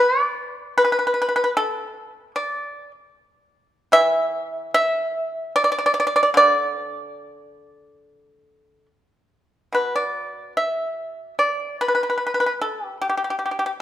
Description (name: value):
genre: chinese traditional, Chinese solo plucked strings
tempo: 73 BPM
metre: 4/4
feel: uneven beats, rubato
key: D zhi mode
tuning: A4 = 435 Hz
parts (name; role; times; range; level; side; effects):
- pipa; solo; 0.0-13.7 s; B2 to E5; -19 LUFS; equal; none
room: moderate recital hall reverb, RT60 1.8 s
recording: minimal, uncompressed stereo recording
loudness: -19 LUFS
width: side -12 dB against mid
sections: 0.0-9.7 A section; 9.7-13.8 B section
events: none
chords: none